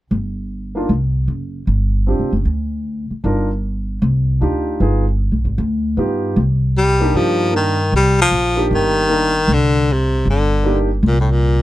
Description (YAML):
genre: jazz, small-group swing and bop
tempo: 154 BPM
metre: 4/4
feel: swing 65% on 8ths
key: C minor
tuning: A4 = 441 Hz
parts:
  - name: upright bass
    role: bass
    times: 0.1-11.6 s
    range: F1 to G2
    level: -17 LUFS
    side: equal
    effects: none
  - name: warm concert grand piano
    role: accompaniment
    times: 0.8-10.9 s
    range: Bb3 to Bb4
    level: -20 LUFS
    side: right 1 dB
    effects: none
  - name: clear baritone saxophone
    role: melody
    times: 6.8-11.6 s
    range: A2 to G3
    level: -16 LUFS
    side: left 2 dB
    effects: none
room: little or no reverb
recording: close, detailed microphones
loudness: -15 LUFS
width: side -15 dB against mid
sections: 0.1-6.4 A section; 6.4-11.6 B section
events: none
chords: 0.1 C5/G; 1.7 G7sus4; 3.2 Cm11/G; 4.8 G7b9b13; 6.4 Cm9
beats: | 0.11 0.50 0.89 1.28 | 1.67 2.06 2.46 2.85 | 3.24 3.63 4.02 4.41 | 4.80 5.19 5.58 5.97 | 6.36 6.75 7.14 7.53 | 7.92 8.31 8.70 9.09 | 9.48 9.87 10.26 10.65 | 11.04 11.43